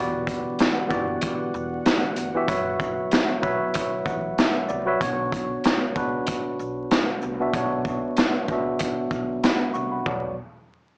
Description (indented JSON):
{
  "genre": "hip hop, boom-bap hip-hop",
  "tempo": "95 BPM",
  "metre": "4/4",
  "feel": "swing 56% on 16ths",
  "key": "B minor",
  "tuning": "A4 = 439 Hz",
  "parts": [
    { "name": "tine electric piano", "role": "accompaniment", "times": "0.0-10.4 s", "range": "B2 to C#6", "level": "-25 LUFS", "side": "equal", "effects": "medium stereo tremolo, cassette tape, high-pass filter, low-pass filter" },
    { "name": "dark analog pad", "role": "sustained chords", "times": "0.6-5.0 s", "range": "D3 to F#5", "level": "-38 LUFS", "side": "equal", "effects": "none" },
    { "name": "upright bass", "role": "bass", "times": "0.0-10.4 s", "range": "E1 to C#2", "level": "-38 LUFS", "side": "equal", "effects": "none" },
    { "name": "crunchy breakbeat drum kit", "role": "drums", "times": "0.3-10.2 s", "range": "hi-hat, kick drum, shaker, snare drum, toms", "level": "-24 LUFS", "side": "equal", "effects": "none" }
  ],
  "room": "little or no reverb",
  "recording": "dry, gritty hardware recording, vinyl crackle, small speaker sound",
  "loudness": "-22 LUFS",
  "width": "side -39 dB against mid",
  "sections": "0.0-5.0 A section; 5.0-10.1 B section",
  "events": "filter sweep on tine electric piano 5.0-10.1",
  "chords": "0.0 Em9; 2.5 F#7sus4; 5.0 Bmadd9"
}